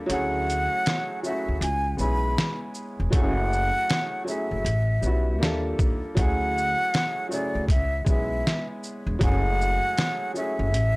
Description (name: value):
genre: lo-fi hip hop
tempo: 79 BPM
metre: 4/4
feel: swing 65% on 16ths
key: F# minor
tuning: A4 = 437 Hz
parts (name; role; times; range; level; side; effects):
- warm upright piano; accompaniment; 0.0-10.7 s; C#3 to A4; -30 LUFS; equal; none
- breathy mellow silver concert flute; melody; 0.1-11.0 s; D5 to B5; -27 LUFS; equal; none
- upright bass; bass; 0.1-11.0 s; E1 to D#2; -26 LUFS; equal; none
- trip hop sampler-style drum kit; drums; 0.1-11.0 s; hi-hat, kick drum, shaker, snare drum; -24 LUFS; equal; none
room: small room ambience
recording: dry, gritty hardware recording, transformer saturation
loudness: -22 LUFS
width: side -24 dB against mid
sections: 0.0-11.0 A section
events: break 0.0-3.1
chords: 0.1 Dmaj9#11; 1.6 C#m7; 3.1 F#m9; 4.6 A13; 5.4 D#maj9#11; 6.2 Dmaj9#11; 7.7 C#m7; 9.2 F#m9